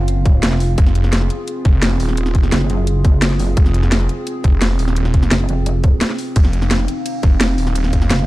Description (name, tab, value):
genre	dark technical drum and bass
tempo	172 BPM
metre	4/4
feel	straight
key	F phrygian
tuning	A4 = 440 Hz
part	dark analog pad	sustained chords	0.0-8.3 s	C4 to F5	-24 LUFS	right 2 dB	lush chorus, sidechain pumping
part	pulsing pluck wobble bass	bass	0.0-8.3 s	F1 to Gb1	-17 LUFS	equal	chorus, tube saturation
part	drum and bass drum kit	drums	0.1-8.3 s	hi-hat, ride cymbal, snare drum	-20 LUFS	equal	overdrive, studio reverb
part	electronic kick drum	drums	0.3-8.0 s	none	-12 LUFS	equal	overdrive, studio reverb
part	snarling distorted saw bass	bass	0.8-8.1 s	Eb1 to F1	-17 LUFS	equal	distortion, sidechain pumping
room	little or no reverb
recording	dark, warm production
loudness	-13 LUFS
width	side -17 dB against mid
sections	0.0-8.3 A section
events	break 6.0-6.4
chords	0.0 F5